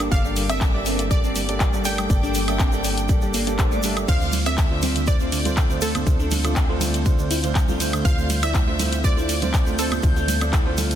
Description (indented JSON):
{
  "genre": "progressive house",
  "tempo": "121 BPM",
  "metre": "4/4",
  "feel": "straight",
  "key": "D minor",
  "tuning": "A4 = 439 Hz",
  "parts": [
    { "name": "warm analog pad", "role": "sustained chords", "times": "0.0-11.0 s", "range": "D3 to A4", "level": "-32 LUFS", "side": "left 2 dB", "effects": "chorus, sidechain pumping" },
    { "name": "glassy wavetable pluck", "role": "arpeggios", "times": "0.0-10.9 s", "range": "D3 to F4", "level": "-28 LUFS", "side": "right 1 dB", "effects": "chorus, sidechain pumping, ping-pong delay" },
    { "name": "warm grand piano", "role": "stabs", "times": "0.0-10.9 s", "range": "A3 to E5", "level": "-29 LUFS", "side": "right 4 dB", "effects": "sidechain pumping, ping-pong delay" },
    { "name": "tight sequencer bass", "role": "bass", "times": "0.0-11.0 s", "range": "G1 to D2", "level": "-26 LUFS", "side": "equal", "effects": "tube saturation, sidechain pumping" },
    { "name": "house drum kit", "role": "drums", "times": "0.0-11.0 s", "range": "crash cymbal, handclaps, hi-hat, ride cymbal, woodblock", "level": "-28 LUFS", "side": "left 1 dB", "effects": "none" },
    { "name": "backwards swelling texture", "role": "texture", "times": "0.0-11.0 s", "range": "D6 to G6", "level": "-36 LUFS", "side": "left 1 dB", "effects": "built-in reverb, sidechain pumping" },
    { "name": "wide unison pluck", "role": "melody", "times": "0.1-11.0 s", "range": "A4 to G5", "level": "-30 LUFS", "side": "right 2 dB", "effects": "sidechain pumping, digital delay" },
    { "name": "bright studio violin section", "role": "second line", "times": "0.1-11.0 s", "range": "A4 to G5", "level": "-33 LUFS", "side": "left 1 dB", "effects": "sidechain pumping, ping-pong delay" },
    { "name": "electronic kick drum", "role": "drums", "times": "0.1-10.6 s", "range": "none", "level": "-20 LUFS", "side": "equal", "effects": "none" },
    { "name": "tube shaker", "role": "percussion", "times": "0.1-11.0 s", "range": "none", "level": "-35 LUFS", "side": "right 5 dB", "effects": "none" },
    { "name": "swell", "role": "sound effects", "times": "3.3-4.1 s", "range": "none", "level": "-32 LUFS", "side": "equal", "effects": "none" },
    { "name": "congas", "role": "percussion", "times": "4.3-10.9 s", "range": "none", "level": "-32 LUFS", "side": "right 6 dB", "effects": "sidechain pumping on perc" }
  ],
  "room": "light reverb, digital ambience",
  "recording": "dense, heavily limited modern master",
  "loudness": "-18 LUFS",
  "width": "side -10 dB against mid",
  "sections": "0.0-11.0 A section",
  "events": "swell 3.3-4.1",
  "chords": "0.0 Gmadd9; 4.1 Dm7",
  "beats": "| 0.12 0.61 1.11 1.60 | 2.10 2.60 3.09 3.59 | 4.08 4.58 5.08 5.57 | 6.07 6.56 7.06 7.55 | 8.05 8.55 9.04 9.54 | 10.03 10.53"
}